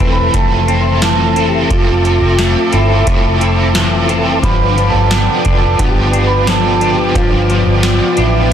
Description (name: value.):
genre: dream pop.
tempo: 88 BPM.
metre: 4/4.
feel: straight.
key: F lydian.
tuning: A4 = 445 Hz.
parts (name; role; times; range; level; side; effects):
electric guitar through a small old amp; melody; 0.0-8.5 s; E4 to C5; -17 LUFS; right 3 dB; spring reverb, ping-pong delay, shimmer reverb.
crunchy overdriven guitar; accompaniment; 0.0-8.5 s; G2 to A4; -18 LUFS; right 3 dB; tremolo, ensemble chorus, shimmer reverb.
mellow tonewheel organ; sustained chords; 0.0-8.5 s; A4 to D6; -21 LUFS; right 1 dB; chorus vibrato, wide subtle chorus, shimmer reverb.
semi-hollow electric guitar; arpeggios; 0.0-8.5 s; E3 to D4; -18 LUFS; left 6 dB; lush chorus, ping-pong delay, shimmer reverb.
vintage muted fingered electric bass; bass; 0.0-8.5 s; E1 to A1; -15 LUFS; equal; none.
booming analog drum machine; drums; 0.0-8.3 s; hi-hat, kick drum, snare drum; -16 LUFS; equal; none.
room: moderate concert hall reverb, RT60 2.2 s.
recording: dense, heavily limited modern master.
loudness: -10 LUFS.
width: side -9 dB against mid.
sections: 0.0-8.5 A section.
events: none.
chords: 0.0 Fmaj7; 4.4 G7.